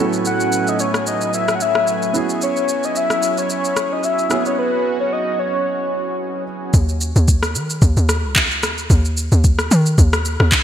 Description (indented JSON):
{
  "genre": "amapiano",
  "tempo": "111 BPM",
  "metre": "4/4",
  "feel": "swing 55% on 16ths",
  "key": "unclear",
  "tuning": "A4 = 440 Hz",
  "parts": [
    { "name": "warm grand piano", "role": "accompaniment", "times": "0.0-6.8 s", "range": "A2 to A4", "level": "-24 LUFS", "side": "right 4 dB", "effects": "lush chorus" },
    { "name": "lush unison pad", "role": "sustained chords", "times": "0.0-6.7 s", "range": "F#3 to G#5", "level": "-25 LUFS", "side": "right 2 dB", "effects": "chorus, sidechain pumping" },
    { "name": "smooth R&B drum kit", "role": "drums", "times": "0.1-10.6 s", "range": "handclaps, kick drum, rim click, shaker", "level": "-18 LUFS", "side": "equal", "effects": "overdrive, gated reverb" },
    { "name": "soft octave-layered synth lead", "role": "melody", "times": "0.3-6.4 s", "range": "B4 to F#5", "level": "-20 LUFS", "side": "left 2 dB", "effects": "chorus, ping-pong delay" },
    { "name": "hollow log drum bass", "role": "bass", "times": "6.7-10.5 s", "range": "C#2 to D#3", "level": "-16 LUFS", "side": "equal", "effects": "none" }
  ],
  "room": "moderate lush hall reverb, RT60 2.1 s",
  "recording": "bright 1980s-style digital production",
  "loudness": "-15 LUFS",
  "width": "side -10 dB against mid",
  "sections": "0.0-6.7 A section; 6.7-10.6 B section",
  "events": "drop 6.7-10.6",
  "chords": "0.0 Amaj13; 2.1 E69; 6.7 N.C."
}